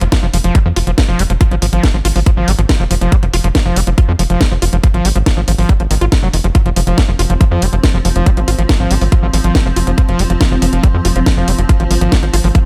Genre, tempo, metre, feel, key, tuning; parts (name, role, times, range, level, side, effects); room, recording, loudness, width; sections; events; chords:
psychedelic trance; 140 BPM; 4/4; straight; F minor; A4 = 440 Hz
screaming distorted acid line; riff; 0.0-12.6 s; Eb3 to Gb4; -21 LUFS; equal; distortion, chorus, sidechain pumping, delay
tight sequencer bass; bass; 0.0-12.5 s; F1 to F2; -16 LUFS; equal
garage drum kit; drums; 0.0-12.6 s; hi-hat, snare drum; -22 LUFS; equal
electronic kick drum; drums; 0.1-12.6 s; -13 LUFS; equal
evolving wavetable pad; sustained chords; 7.2-12.7 s; F3 to C4; -24 LUFS; equal; ensemble chorus, built-in reverb, phaser, sidechain pumping
little or no reverb; -13 LUFS; mono
0.0-12.7 A section
0.0 F5